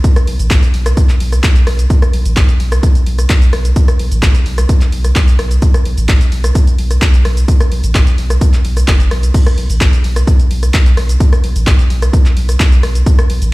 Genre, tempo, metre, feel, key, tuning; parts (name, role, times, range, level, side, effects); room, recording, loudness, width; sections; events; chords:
acid house; 129 BPM; 4/4; straight; A4 = 440 Hz
electronic kick drum; drums; 0.0-13.2 s; -10 LUFS; equal
punchy analog drum machine; drums; 0.0-13.5 s; cabasa, crash cymbal, handclaps, hi-hat, rim click; -20 LUFS; equal
saturated sub bass; bass; 0.3-13.5 s; F#1 to B1; -13 LUFS; equal; sidechain pumping
little or no reverb; played on a big sound system in a bare room, stone room reverb; -9 LUFS; side -21 dB against mid
0.0-13.5 A section